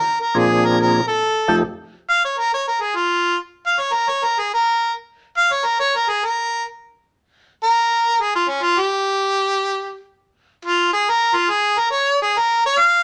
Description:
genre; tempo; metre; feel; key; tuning
blues; 140 BPM; 4/4; swing 65% on 8ths; unclear; A4 = 440 Hz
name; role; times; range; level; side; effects
clear harmonica; melody; 0.0-13.0 s; Db4 to F5; -19 LUFS; equal; overdrive
percussive tonewheel organ; accompaniment; 0.3-1.6 s; F2 to Ab4; -19 LUFS; equal; slow rotary speaker, overdrive, chorus vibrato
room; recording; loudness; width
light reverb; none; -19 LUFS; mono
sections
0.0-2.1 A section; 2.1-13.0 B section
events
harmonica solo 2.1-13.0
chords
0.4 Bb7; 1.2 F7; 2.1 N.C.

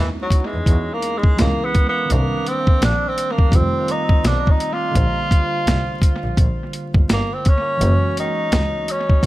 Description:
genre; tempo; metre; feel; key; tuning
hip hop, jazz-hop; 84 BPM; 4/4; swing 60% on 16ths; unclear; A4 = 439 Hz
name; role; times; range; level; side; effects
warm tenor saxophone; melody; 0.0-9.3 s; F#3 to F4; -22 LUFS; equal; analog delay
tine electric piano; accompaniment; 0.0-9.3 s; D3 to B#4; -27 LUFS; right 2 dB; medium stereo tremolo, analog delay
clear double bass; bass; 0.0-9.3 s; F1 to E2; -20 LUFS; equal; none
boom bap sampler-style drum kit; drums; 0.3-9.3 s; hi-hat, kick drum, snare drum; -17 LUFS; equal; none
room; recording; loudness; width
small room ambience; echo-heavy mix, vinyl crackle; -16 LUFS; side -16 dB against mid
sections
0.0-9.3 A section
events
tenor saxophone solo 0.0-9.3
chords
0.0 C#m9; 2.1 Cm9; 3.5 F9; 5.0 A#69; 7.8 F#9

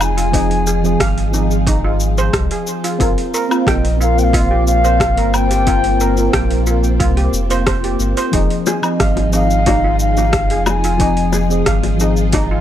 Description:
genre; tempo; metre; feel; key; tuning
sunset chillout; 90 BPM; 4/4; straight; F minor; A4 = 437 Hz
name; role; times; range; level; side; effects
mellow wooden flute; melody; 0.0-11.6 s; Eb5 to Ab5; -20 LUFS; left 2 dB; tape echo
mellow FM electric piano; accompaniment; 0.0-12.6 s; F3 to Eb5; -22 LUFS; moving between left 6 dB and right 2 dB; chorus, phaser, auto-pan, tape echo
soft string machine; sustained chords; 0.0-12.6 s; F3 to Ab4; -22 LUFS; equal; ensemble chorus
warm sub bass; bass; 0.0-12.6 s; F1 to C2; -17 LUFS; equal; none
deep house drum kit; drums; 0.0-12.5 s; cabasa, hi-hat, rim click, woodblock; -22 LUFS; left 1 dB; overdrive
steel pan; arpeggios; 0.2-12.6 s; Eb4 to G5; -23 LUFS; right 4 dB; tape echo
electronic kick drum; drums; 0.3-12.5 s; none; -20 LUFS; equal; overdrive
bongos; percussion; 8.7-12.5 s; none; -21 LUFS; left 7 dB; none
room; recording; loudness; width
little or no reverb; dry, gritty hardware recording, transformer saturation; -13 LUFS; side -11 dB against mid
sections
0.0-12.6 A section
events
none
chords
0.0 Fm7; 3.0 C7sus4/G; 8.3 Fm7

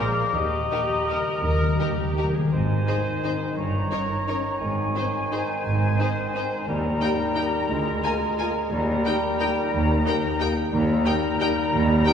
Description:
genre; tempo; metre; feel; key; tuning
classical; 156-193 BPM; 3/4; rubato; Ab major; A4 = 436 Hz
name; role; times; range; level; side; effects
rich studio violin section; melody; 0.0-12.1 s; Bb4 to Ab5; -34 LUFS; left 3 dB; none
bright flute section; second line; 0.0-12.1 s; Ab5 to Bb5; -32 LUFS; left 4 dB; none
dark clarinet; second line; 0.0-12.1 s; Eb4 to Ab4; -34 LUFS; left 7 dB; none
mellow cor anglais; second line; 0.0-12.1 s; Bb4 to Eb5; -30 LUFS; equal; none
rich studio violin section; second line; 0.0-12.1 s; Eb4 to Bb4; -37 LUFS; left 3 dB; none
rich studio viola section; accompaniment; 0.0-12.1 s; Eb4 to Bb4; -34 LUFS; right 1 dB; none
dark French horn section; sustained chords; 0.0-12.1 s; Bb3 to Ab4; -34 LUFS; left 3 dB; none
rich studio cello section; bass; 0.0-12.0 s; D2 to Eb3; -28 LUFS; right 1 dB; none
rich studio double bass section; bass; 0.0-12.0 s; G1 to Eb2; -28 LUFS; right 1 dB; none
timpani; percussion; 0.4-2.5, 6.7-7.2, 10.7-11.2 s; Eb3; -30 LUFS; left 2 dB; none
mellow bassoon; accompaniment; 2.5-12.1 s; Eb3 to Ab3; -30 LUFS; right 1 dB; none
room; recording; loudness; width
wet church reverb, RT60 2.7 s; recorded in a church or concert hall, lossy compression artefacts; -21 LUFS; side -8 dB against mid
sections
0.0-2.5 A section; 2.5-12.1 B section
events
timpani fill 0.4-2.5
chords
0.0 Bb7; 0.4 Eb; 2.5 Ab; 3.6 Eb7/G; 4.6 Ab; 6.7 Eb; 7.7 Bb7/D; 8.7 Eb

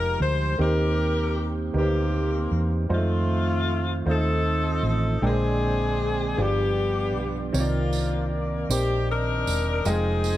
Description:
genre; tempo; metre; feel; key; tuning
slow gospel; 52 BPM (dotted quarters); 6/8; straight; unclear; A4 = 443 Hz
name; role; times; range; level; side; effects
warm saxophone section; melody; 0.0-10.4 s; A3 to C5; -27 LUFS; left 3 dB; none
warm grand piano; accompaniment; 0.0-10.4 s; G2 to G5; -30 LUFS; right 1 dB; none
mellow tonewheel organ; sustained chords; 0.0-10.4 s; D3 to G5; -31 LUFS; right 3 dB; slow rotary speaker
hollow-body short-scale fingered electric bass; bass; 0.0-10.4 s; Fb1 to F2; -25 LUFS; equal; none
tambourine; percussion; 7.5-10.4 s; none; -34 LUFS; right 12 dB; none
room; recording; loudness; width
light reverb, studio reverb; dark, warm production; -22 LUFS; side -14 dB against mid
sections
0.0-10.4 A section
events
none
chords
0.0 Fm9; 0.6 Cm7/Eb; 2.9 F7; 5.2 Bb13; 6.4 G7; 7.5 Cm9; 9.9 Fm9

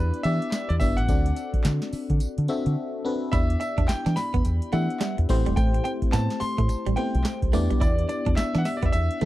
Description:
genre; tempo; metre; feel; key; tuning
R&B, new jack swing; 107 BPM; 4/4; swing 62% on 16ths; E minor; A4 = 440 Hz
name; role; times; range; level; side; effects
clear concert grand piano; melody; 0.0-9.3 s; B4 to C6; -31 LUFS; equal; none
FM electric piano; accompaniment; 0.0-9.3 s; A3 to E5; -29 LUFS; left 3 dB; chorus
deep dub fingered electric bass; bass; 0.0-9.3 s; E1 to E3; -24 LUFS; equal; none
booming analog drum machine; drums; 0.1-9.3 s; handclaps, hi-hat, kick drum, snare drum, tambourine; -25 LUFS; equal; overdrive
direct-recorded clean electric guitar; riff; 3.3-9.3 s; G3 to E4; -31 LUFS; right 8 dB; lush chorus
room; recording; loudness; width
little or no reverb; dry, close 1970s-style studio recording; -22 LUFS; side -16 dB against mid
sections
0.0-9.3 A section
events
break 2.8-3.3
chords
0.0 Em7; 1.1 D7; 3.3 Em7; 5.3 Am7; 7.5 Em7

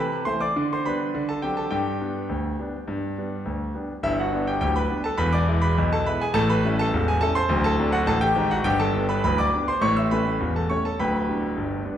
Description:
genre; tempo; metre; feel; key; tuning
ragtime piano; 104 BPM; 2/4; straight; G major; A4 = 440 Hz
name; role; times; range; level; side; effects
clear concert grand piano; solo; 0.0-12.0 s; D1 to E6; -21 LUFS; equal; none
room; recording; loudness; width
wet recital hall reverb, RT60 1.4 s; recorded in a church or concert hall; -21 LUFS; side -10 dB against mid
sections
0.0-4.1 A section; 4.1-12.0 B section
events
none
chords
0.0 Am/C; 0.6 G/D; 1.1 D7; 1.7 G; 5.2 E7; 6.4 A7; 7.5 D7; 8.7 G; 9.8 A7; 11.0 G/D

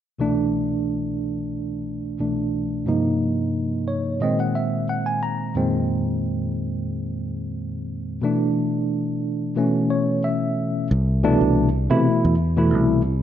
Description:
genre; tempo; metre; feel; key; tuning
jazz; 90 BPM; 4/4; straight; unclear; A4 = 441 Hz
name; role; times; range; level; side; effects
bright tine electric piano; accompaniment; 0.2-13.0 s; C2 to Bb5; -21 LUFS; equal; slow stereo tremolo
fingered electric bass; bass; 10.9-13.2 s; C2 to C3; -20 LUFS; equal; none
room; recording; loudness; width
moderate echo chamber reverb, RT60 1.7 s; none; -20 LUFS; side -10 dB against mid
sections
0.2-10.9 A section; 10.9-13.2 B section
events
tine electric piano fill 3.6-5.6, 9.6-10.9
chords
0.2 C6; 2.9 Eb13/G; 4.2 Ab9/Bb; 5.6 Fm7; 8.2 E5; 9.6 A; 10.9 Cmaj9

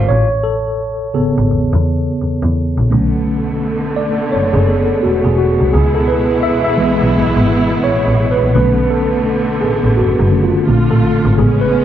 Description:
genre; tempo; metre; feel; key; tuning
R&B, neo-soul; 85 BPM; 4/4; swing 61% on 16ths; B dorian; A4 = 442 Hz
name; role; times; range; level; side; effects
mellow tine electric piano; accompaniment; 0.0-11.8 s; C#3 to E5; -15 LUFS; equal; medium stereo tremolo
bright double bass; bass; 0.0-11.8 s; E1 to E2; -16 LUFS; equal; none
warm studio string section; sustained chords; 2.9-11.8 s; A2 to E#4; -19 LUFS; right 1 dB; none
room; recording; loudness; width
moderate studio reverb, RT60 0.8 s; dark, warm production; -12 LUFS; side -11 dB against mid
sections
0.0-11.8 A section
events
tine electric piano solo 0.0-11.8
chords
0.1 Amaj7; 2.9 Bm9; 5.7 C#m7; 8.5 Bm9; 10.7 A#maj7

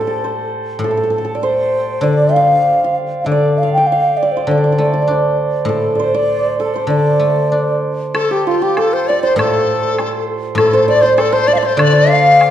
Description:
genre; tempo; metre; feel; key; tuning
chinese traditional, Chinese chamber ensemble; 99 BPM; 2/4; rubato; D yu mode; A4 = 440 Hz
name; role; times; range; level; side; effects
low xiao; melody; 0.0-12.5 s; F4 to G5; -16 LUFS; equal; none
hammered dulcimer; second line; 0.0-12.5 s; F4 to G5; -18 LUFS; right 4 dB; none
guzheng; accompaniment; 0.0-12.5 s; A2 to D4; -18 LUFS; left 2 dB; none
woodblock; percussion; 8.1-12.5 s; none; -25 LUFS; left 1 dB; none
large dizi; second line; 8.2-12.5 s; F4 to F5; -16 LUFS; left 5 dB; none
room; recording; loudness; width
wet recital hall reverb, RT60 1.5 s; dark, warm production; -12 LUFS; side -11 dB against mid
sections
0.0-8.1 A section; 8.1-12.5 B section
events
none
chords
none

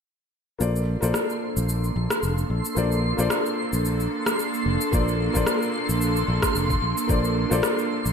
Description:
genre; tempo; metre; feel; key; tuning
sunset chillout; 111 BPM; 4/4; swing 56% on 16ths; Bb major; A4 = 440 Hz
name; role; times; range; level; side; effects
warm grand piano; accompaniment; 0.6-8.1 s; Bb3 to D5; -29 LUFS; left 3 dB; auto-pan, digital delay
airy breathy pad; sustained chords; 1.0-8.1 s; Bb3 to A4; -28 LUFS; right 2 dB; chorus
fretless electric bass; bass; 0.6-8.1 s; F1 to Bb1; -24 LUFS; equal; none
electronic shaker and rim click; drums; 0.6-8.1 s; none; -28 LUFS; left 1 dB; overdrive, gated reverb
twinkling granular texture; texture; 1.3-8.1 s; C6; -32 LUFS; right 1 dB; built-in reverb, analog chorus
electronic kick drum; drums; 4.9-7.2 s; none; -24 LUFS; equal; overdrive
room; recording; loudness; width
moderate lush hall reverb, RT60 1.8 s; bright 1980s-style digital production; -21 LUFS; side -6 dB against mid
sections
0.6-8.1 A section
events
filter sweep on fretless electric bass 0.6-8.1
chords
0.6 Bbmaj9

